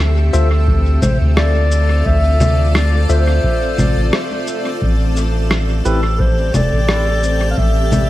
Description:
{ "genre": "ambient dub", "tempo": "87 BPM", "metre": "4/4", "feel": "straight", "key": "unclear", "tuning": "A4 = 441 Hz", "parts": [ { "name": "granular cloud pad", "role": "sustained chords", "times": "0.0-8.1 s", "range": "C4 to G5", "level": "-23 LUFS", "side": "equal", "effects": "built-in reverb" }, { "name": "soft dub sub bass", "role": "bass", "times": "0.0-8.1 s", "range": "E1 to D2", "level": "-14 LUFS", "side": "equal", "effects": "none" }, { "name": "dark clarinet", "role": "melody", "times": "0.3-8.1 s", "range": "A4 to F5", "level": "-21 LUFS", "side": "left 1 dB", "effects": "dub echo" }, { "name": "tine electric piano", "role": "stabs", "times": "0.3-6.0 s", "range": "C4 to E5", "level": "-27 LUFS", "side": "left 2 dB", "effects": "none" }, { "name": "electronic cabasa, congas and rim click", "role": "drums", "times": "0.3-8.1 s", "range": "none", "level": "-20 LUFS", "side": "equal", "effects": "overdrive, small room ambience, dub echo" }, { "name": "electronic kick drum", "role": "drums", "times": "0.7-7.7 s", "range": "none", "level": "-19 LUFS", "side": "equal", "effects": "small room ambience" } ], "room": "light reverb", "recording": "vinyl crackle", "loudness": "-13 LUFS", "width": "side -15 dB against mid", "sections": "0.0-8.1 A section", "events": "none", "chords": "0.0 Dm7; 4.8 Am7", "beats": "0.68 1.37 | 2.06 2.75 3.44 4.13 | 4.82 5.51 6.20 6.89 | 7.58" }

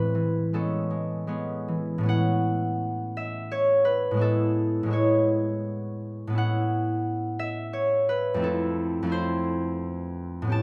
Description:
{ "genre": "classical, solo harp piece", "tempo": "85 BPM", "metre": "3/4", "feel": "uneven beats, rubato", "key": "A major", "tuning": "A4 = 440 Hz", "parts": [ { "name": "concert harp", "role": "solo", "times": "0.0-10.6 s", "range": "F2 to A5", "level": "-26 LUFS", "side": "equal", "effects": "none" } ], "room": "little or no reverb", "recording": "close, detailed microphones", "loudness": "-26 LUFS", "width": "mono", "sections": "0.0-2.1 A section; 2.1-10.6 B section", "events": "none", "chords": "0.0 Amaj9; 2.1 A69; 8.4 Fmaj7", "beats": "0.53 1.28 | 2.08 2.81 3.51 | 4.22 4.92 5.63 | 6.36 7.04 7.72 | 8.41 9.10 9.79 | 10.52" }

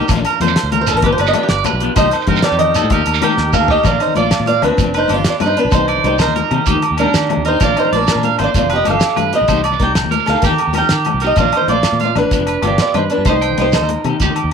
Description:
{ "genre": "highlife guitar band", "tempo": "128 BPM (dotted quarters)", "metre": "12/8", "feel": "straight", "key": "Bb major", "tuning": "A4 = 435 Hz", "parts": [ { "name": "fingerpicked swing-style acoustic guitar", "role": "melody", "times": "0.0-14.5 s", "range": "D4 to G5", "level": "-17 LUFS", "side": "right 1 dB", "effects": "none" }, { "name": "clean electric guitar", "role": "accompaniment", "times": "0.0-14.3 s", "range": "F3 to G4", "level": "-25 LUFS", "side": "left 12 dB", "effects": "none" }, { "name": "tonewheel organ", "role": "sustained chords", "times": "0.0-3.8 s", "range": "D4 to C5", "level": "-27 LUFS", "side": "equal", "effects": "slow rotary speaker, overdrive" }, { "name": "electric guitar at the edge of break-up", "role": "arpeggios", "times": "0.0-14.5 s", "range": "C4 to G5", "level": "-19 LUFS", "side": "right 11 dB", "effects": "lush chorus" }, { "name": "fingered electric bass", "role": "bass", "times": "0.1-14.5 s", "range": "F1 to Eb3", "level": "-20 LUFS", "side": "equal", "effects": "none" }, { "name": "damped 70s drum kit", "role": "drums", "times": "0.1-14.4 s", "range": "hi-hat, kick drum, snare drum, toms", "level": "-19 LUFS", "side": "equal", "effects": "none" }, { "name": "agogo bells", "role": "percussion", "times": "0.1-14.5 s", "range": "none", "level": "-26 LUFS", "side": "left 12 dB", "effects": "none" }, { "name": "congas", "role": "percussion", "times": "0.1-14.4 s", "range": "none", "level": "-23 LUFS", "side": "left 12 dB", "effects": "none" }, { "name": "shekere", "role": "percussion", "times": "0.1-14.3 s", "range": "none", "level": "-24 LUFS", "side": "right 6 dB", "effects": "none" } ], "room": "light reverb, small room ambience", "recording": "1960s-style stereo with parts hard left and right", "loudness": "-12 LUFS", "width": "side -6 dB against mid", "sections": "0.0-3.8 A section; 3.8-14.5 B section", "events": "steel-string acoustic guitar solo 0.0-3.8; drum fill 3.4-3.8", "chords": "0.1 Bb; 1.0 G7; 2.0 Cm7; 2.9 Eb; 3.8 Bb; 4.8 G7; 5.7 Cm7; 6.7 Eb; 7.6 Bb; 8.5 G7; 9.5 Cm7; 10.4 Eb; 11.4 Bb; 12.3 G7; 13.3 Cm7", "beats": "| 0.10 0.57 1.04 1.51 | 1.98 2.44 2.91 3.38 | 3.85 4.32 4.79 5.26 | 5.73 6.20 6.67 7.14 | 7.61 8.08 8.55 9.02 | 9.49 9.96 10.43 10.90 | 11.37 11.84 12.32 12.79 | 13.26 13.73 14.21" }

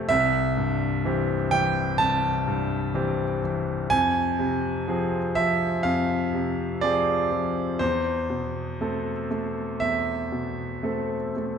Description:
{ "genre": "neoclassical minimalist piano", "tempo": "55-64 BPM", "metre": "4/4", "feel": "rubato", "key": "C major", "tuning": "A4 = 441 Hz", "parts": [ { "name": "bright grand piano", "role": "solo", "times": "0.0-11.6 s", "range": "C2 to A5", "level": "-23 LUFS", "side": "equal", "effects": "slapback echo" } ], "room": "moderate concert hall reverb, RT60 1.7 s", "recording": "dark, warm production", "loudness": "-23 LUFS", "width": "side -7 dB against mid", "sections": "0.0-11.6 A section", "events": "none", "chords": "0.1 C6; 3.9 Fm; 7.8 Amadd9/E", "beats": "| 0.10 1.05 2.00 2.95 | 3.92 4.88 5.84 6.81 | 7.80 8.80 9.81 10.83" }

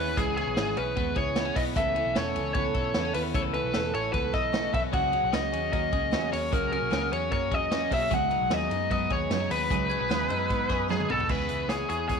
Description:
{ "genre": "jangly indie pop", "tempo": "151 BPM", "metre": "4/4", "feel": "straight", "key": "C# minor", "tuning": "A4 = 441 Hz", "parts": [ { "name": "biting lead guitar", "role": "melody", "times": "0.0-12.2 s", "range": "G#4 to F#5", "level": "-28 LUFS", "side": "equal", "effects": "overdrive" }, { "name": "picked steel-string acoustic guitar", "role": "accompaniment", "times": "0.0-12.2 s", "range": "C#3 to A4", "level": "-34 LUFS", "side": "right 13 dB", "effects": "none" }, { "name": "twelve-string electric guitar", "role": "arpeggios", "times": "0.0-12.2 s", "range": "E3 to A4", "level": "-33 LUFS", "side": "left 15 dB", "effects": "none" }, { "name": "vintage muted picked electric bass", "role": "bass", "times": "0.0-12.2 s", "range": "E1 to G#2", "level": "-35 LUFS", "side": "equal", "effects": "none" }, { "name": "vintage drum kit", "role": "drums", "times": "0.2-12.2 s", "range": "crash cymbal, hi-hat, kick drum, ride cymbal, snare drum, toms", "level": "-32 LUFS", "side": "equal", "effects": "none" }, { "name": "glockenspiel with hard plastic mallets", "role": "second line", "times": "9.9-11.3 s", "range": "B5 to G#6", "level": "-38 LUFS", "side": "right 12 dB", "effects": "none" } ], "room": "light reverb, small room ambience", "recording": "1960s-style stereo with parts hard left and right", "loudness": "-25 LUFS", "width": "side -6 dB against mid", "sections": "0.0-11.3 A section", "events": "drum fill 10.9-11.3", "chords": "0.0 C#m7; 1.8 Aadd9; 4.9 F#add9; 8.1 G#m7; 11.3 C#m7", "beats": "| 0.17 0.57 0.97 1.36 | 1.76 2.15 2.55 2.95 | 3.35 3.74 4.14 4.54 | 4.93 5.33 5.73 6.13 | 6.53 6.92 7.32 7.72 | 8.12 8.51 8.91 9.31 | 9.71 10.11 10.50 10.90 | 11.30 11.70 12.10" }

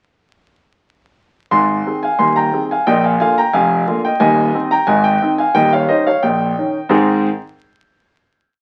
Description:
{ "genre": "ragtime piano", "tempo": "89 BPM", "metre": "2/4", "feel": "straight", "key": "Ab major", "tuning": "A4 = 440 Hz", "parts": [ { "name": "clear concert grand piano", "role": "solo", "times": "1.5-7.3 s", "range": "Eb1 to C6", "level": "-15 LUFS", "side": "equal", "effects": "none" } ], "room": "wet small room ambience, RT60 0.5 s", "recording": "very old 78 rpm record, vinyl crackle", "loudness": "-15 LUFS", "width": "mono", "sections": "1.5-6.9 A section; 6.9-8.2 final chord", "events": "none", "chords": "1.5 Ab; 2.9 Bb; 4.2 Ab/Eb; 5.5 Eb7; 6.9 Ab", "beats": "| 1.51 2.19 | 2.86 3.53 | 4.20 4.87 | 5.54 6.22 | 6.90" }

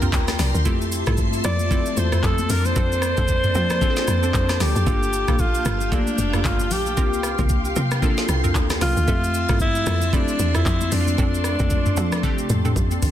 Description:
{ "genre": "amapiano", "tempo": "114 BPM", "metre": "4/4", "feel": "swing 58% on 16ths", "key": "unclear", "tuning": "A4 = 440 Hz", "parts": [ { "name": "glassy digital keys", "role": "accompaniment", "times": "0.0-13.1 s", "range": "A3 to Bb5", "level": "-29 LUFS", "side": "left 3 dB", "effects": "chorus" }, { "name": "ensemble organ-string", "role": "sustained chords", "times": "0.0-13.1 s", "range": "F3 to C6", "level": "-29 LUFS", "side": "equal", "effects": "ensemble chorus, sidechain pumping" }, { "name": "hollow square pluck", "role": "stabs", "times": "0.0-12.7 s", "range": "Bb3 to E5", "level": "-32 LUFS", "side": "right 5 dB", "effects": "chorus, ping-pong delay" }, { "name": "woody log drum bass", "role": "bass", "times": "0.0-13.1 s", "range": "F1 to F3", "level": "-23 LUFS", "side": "equal", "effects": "none" }, { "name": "smooth R&B drum kit", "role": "drums", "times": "0.0-13.1 s", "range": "handclaps, hi-hat, kick drum, rim click, shaker, snare drum, toms", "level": "-23 LUFS", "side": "equal", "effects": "none" }, { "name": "congas", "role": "percussion", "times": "0.3-13.1 s", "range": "none", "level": "-33 LUFS", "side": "left 9 dB", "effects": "none" }, { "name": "breathy alto saxophone", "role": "melody", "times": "1.5-12.7 s", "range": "D4 to D5", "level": "-25 LUFS", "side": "equal", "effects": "ping-pong delay" } ], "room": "digital ambience", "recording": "dense, heavily limited modern master", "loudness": "-18 LUFS", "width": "side -11 dB against mid", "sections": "0.0-13.1 A section", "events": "synth keys fill 0.0-0.7; drum fill 12.2-13.1", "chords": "0.0 C7sus4; 0.7 Fmaj7; 2.5 Bbmaj9/F; 4.9 Gm9; 7.0 C7sus4; 9.1 Fmaj7; 10.9 Dm7", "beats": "0.13 | 0.66 1.18 1.71 2.24 | 2.76 3.29 3.81 4.34 | 4.87 5.39 5.92 6.45 | 6.97 7.50 8.03 8.55 | 9.08 9.61 10.13 10.66 | 11.18 11.71 12.24 12.76" }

